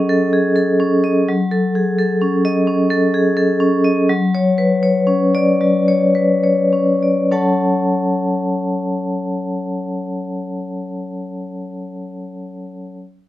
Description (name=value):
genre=classical, contemporary piece for solo vibraphone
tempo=67-86 BPM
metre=4/4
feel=rubato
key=F# minor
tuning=A4 = 441 Hz
part: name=vibraphone with medium hard mallets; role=solo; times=0.0-13.0 s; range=F#3 to A5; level=-15 LUFS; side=left 1 dB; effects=none
room=little or no reverb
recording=close, detailed microphones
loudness=-14 LUFS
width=side -14 dB against mid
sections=0.0-1.3 A section; 1.3-7.3 B section; 7.3-10.7 C section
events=slowing down 0.0-7.3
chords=0.0 F#m6; 4.1 Dmaj7/F#; 7.3 F#m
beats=0.56 | 1.28 1.98 2.67 3.37 | 4.10 4.84 5.62 6.43 | 7.31 8.16 9.00 9.85